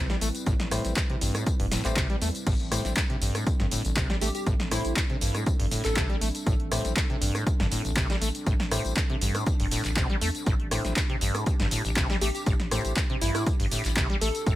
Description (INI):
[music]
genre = acid house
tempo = 120 BPM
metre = 4/4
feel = swing 53% on 16ths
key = A minor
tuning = A4 = 441 Hz
[part]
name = dark analog pad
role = sustained chords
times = 0.0-14.6 s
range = G3 to B4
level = -37 LUFS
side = right 1 dB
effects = wide subtle chorus, sidechain pumping
[part]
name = acid bass, saw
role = riff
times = 0.0-14.5 s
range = A1 to A3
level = -31 LUFS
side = equal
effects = overdrive, lush chorus, cassette tape, dub echo
[part]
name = warm sub bass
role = bass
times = 0.0-14.6 s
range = E1 to E2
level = -31 LUFS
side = equal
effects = sidechain pumping
[part]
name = punchy analog drum machine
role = drums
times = 0.1-14.6 s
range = crash cymbal, handclaps, hi-hat, rim click, snare drum, tambourine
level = -30 LUFS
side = equal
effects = none
[part]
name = electronic kick drum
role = drums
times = 0.5-14.6 s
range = none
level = -27 LUFS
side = equal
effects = none
[part]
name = percussive organ stab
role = stabs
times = 0.7-12.9 s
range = A3 to C5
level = -36 LUFS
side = left 3 dB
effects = chorus, dub echo
[part]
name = plucky unison lead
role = melody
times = 4.2-6.2, 12.2-14.6 s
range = E4 to A4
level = -34 LUFS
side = equal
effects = dub echo
[sound]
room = little or no reverb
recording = none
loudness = -24 LUFS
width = side -15 dB against mid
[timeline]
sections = 0.0-14.6 A section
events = none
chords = 0.0 Am7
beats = | 0.47 0.96 1.47 1.97 | 2.46 2.96 3.46 3.96 | 4.46 4.96 5.46 5.96 | 6.46 6.96 7.46 7.96 | 8.46 8.96 9.46 9.96 | 10.46 10.96 11.46 11.96 | 12.46 12.96 13.46 13.96 | 14.46